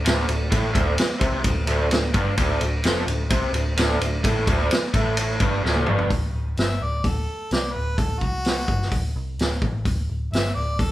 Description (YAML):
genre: blues rock power trio and southern rock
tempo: 128 BPM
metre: 4/4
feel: straight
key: D mixolydian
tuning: A4 = 440 Hz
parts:
  - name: raw garage guitar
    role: riff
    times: 0.0-6.1 s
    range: D2 to C3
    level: -24 LUFS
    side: right 1 dB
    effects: overdrive, spring reverb
  - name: vintage muted picked electric bass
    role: bass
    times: 0.0-10.9 s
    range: D1 to C2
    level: -25 LUFS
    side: equal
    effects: none
  - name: vintage drum kit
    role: drums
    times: 0.1-10.9 s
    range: hi-hat, kick drum, ride cymbal, snare drum, toms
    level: -23 LUFS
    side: equal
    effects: none
  - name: clear harmonica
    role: melody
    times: 6.6-10.9 s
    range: F#4 to E5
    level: -29 LUFS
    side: left 1 dB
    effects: overdrive
room: little or no reverb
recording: band playing live in one room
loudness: -20 LUFS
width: side -15 dB against mid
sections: 0.0-6.1 A section; 6.1-10.9 B section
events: drum fill 5.6-6.1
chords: 0.0 D5; 6.1 N.C.